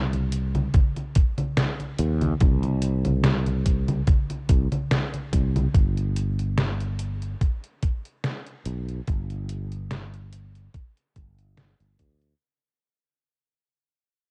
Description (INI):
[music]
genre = vaporwave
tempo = 72 BPM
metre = 4/4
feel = swing 54% on 16ths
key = G major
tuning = A4 = 440 Hz
[part]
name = sustaining fretless electric bass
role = bass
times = 0.0-12.3 s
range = G1 to Eb2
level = -28 LUFS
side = equal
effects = low-pass filter
[part]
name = detuned 8-bit digital drum machine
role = drums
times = 0.1-12.4 s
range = congas, hi-hat, snare drum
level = -29 LUFS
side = equal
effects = gated reverb
[part]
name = electronic kick drum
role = drums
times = 0.7-12.2 s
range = none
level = -22 LUFS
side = equal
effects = none
[sound]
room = little or no reverb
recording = cassette tape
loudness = -25 LUFS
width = mono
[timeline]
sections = 0.0-5.7 A section; 5.7-12.4 B section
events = fade-out 5.7-12.4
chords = none